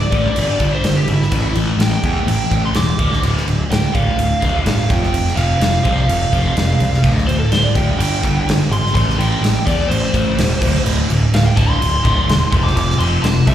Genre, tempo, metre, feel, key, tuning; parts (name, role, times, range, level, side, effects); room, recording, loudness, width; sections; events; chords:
hard rock; 126 BPM; 4/4; straight; D minor; A4 = 438 Hz
biting lead guitar; melody; 0.0-13.5 s; E4 to D6; -21 LUFS; right 1 dB; overdrive, slapback echo
cranked stack guitar; riff; 0.0-13.5 s; D2 to A3; -20 LUFS; equal; overdrive, phaser, slapback echo
fuzz picked electric bass; bass; 0.0-13.5 s; D1 to E2; -17 LUFS; equal; overdrive
big rock drum kit; drums; 0.1-13.5 s; crash cymbal, kick drum, snare drum; -20 LUFS; equal
light reverb, studio reverb; live gig heard through the venue's PA, club reverb; -13 LUFS; side -11 dB against mid
0.0-13.5 A section
lead electric guitar solo 0.0-13.5
0.4 G5; 1.3 A5; 3.0 Dm; 4.9 F5; 7.0 D5; 8.0 G5; 9.0 Am7; 10.6 D5; 12.5 F5